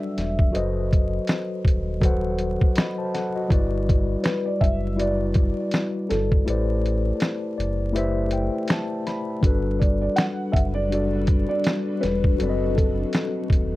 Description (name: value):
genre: lo-fi hip hop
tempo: 81 BPM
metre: 4/4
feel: swing 58% on 16ths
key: G major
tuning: A4 = 440 Hz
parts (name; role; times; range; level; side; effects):
- felt-muted upright piano; melody; 0.0-13.8 s; A4 to F#5; -29 LUFS; equal; low-pass filter, analog delay, plate reverb
- mellow tine electric piano; accompaniment; 0.0-13.8 s; F#3 to B5; -26 LUFS; left 2 dB; fast stereo tremolo, cassette tape, low-pass filter
- sub bass with octave; bass; 0.2-13.8 s; D#1 to A1; -26 LUFS; equal; none
- lo-fi sampler-style drum kit; drums; 0.2-13.7 s; hi-hat, kick drum, snare drum; -21 LUFS; equal; none
- granular cloud pad; sustained chords; 10.5-13.8 s; B2 to B4; -34 LUFS; equal; built-in reverb, low-pass filter
room: light reverb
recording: dark, warm production, vinyl crackle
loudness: -20 LUFS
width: side -17 dB against mid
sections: 0.0-9.4 A section; 9.4-13.8 A section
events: break 6.5-9.4; tine electric piano fill 7.2-9.4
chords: 0.0 Gmaj7; 0.5 B7b9; 3.5 Em9; 6.5 Am11; 9.4 Gmaj7; 12.4 B7b9